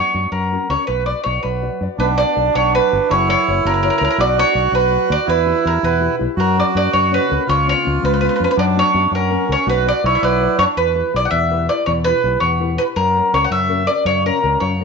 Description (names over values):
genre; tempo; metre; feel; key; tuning
italian folk, Italian serenade; 109 BPM (dotted quarters); 6/8; straight; B harmonic minor; A4 = 443 Hz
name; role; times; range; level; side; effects
bowl-back mandolin; melody; 0.0-14.8 s; A#4 to F#5; -17 LUFS; right 1 dB; none
nylon-string guitar; accompaniment; 0.0-14.8 s; B2 to D5; -24 LUFS; left 12 dB; none
fingered electric bass; bass; 0.1-14.8 s; F#1 to F#2; -21 LUFS; left 1 dB; tube saturation
accordion; second line; 2.0-10.8 s; C#4 to F#4; -20 LUFS; right 8 dB; none
room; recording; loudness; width
moderate echo chamber reverb, RT60 1.4 s, studio reverb; 1960s-style stereo with parts hard left and right, nothing above 7.7 kHz; -14 LUFS; side -5 dB against mid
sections
0.0-2.0 A section; 2.0-10.8 A section; 10.8-14.8 B section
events
none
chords
0.3 F#; 0.9 Bm; 3.1 F#; 4.2 Bm; 5.3 Emadd9; 6.4 F#; 7.5 C#7; 8.6 Bm/F#; 9.1 F#; 9.7 Bm; 10.8 Em; 13.0 F#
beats
0.32 | 0.87 1.43 | 1.98 2.54 | 3.09 3.64 | 4.18 4.73 | 5.28 5.83 | 6.38 6.93 | 7.48 8.02 | 8.57 9.12 | 9.66 10.22 | 10.77 11.32 | 11.87 12.42 | 12.97 13.51 | 14.06 14.61